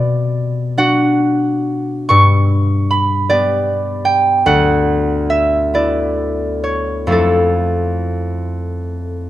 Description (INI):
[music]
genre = classical, solo harp piece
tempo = 38-54 BPM (dotted quarters)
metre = 6/8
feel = rubato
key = unclear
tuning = A4 = 440 Hz
[part]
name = concert harp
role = solo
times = 0.0-9.3 s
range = D2 to C#6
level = -13 LUFS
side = equal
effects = none
[sound]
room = moderate recital hall reverb, RT60 1.8 s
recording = close, detailed microphones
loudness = -13 LUFS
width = side -14 dB against mid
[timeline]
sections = 0.0-9.3 A section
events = none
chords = 0.0 Bm; 2.1 G; 4.5 D69; 7.1 Fmaj7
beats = 0.80 | 2.09 3.29 | 4.46 5.74 | 7.11 8.54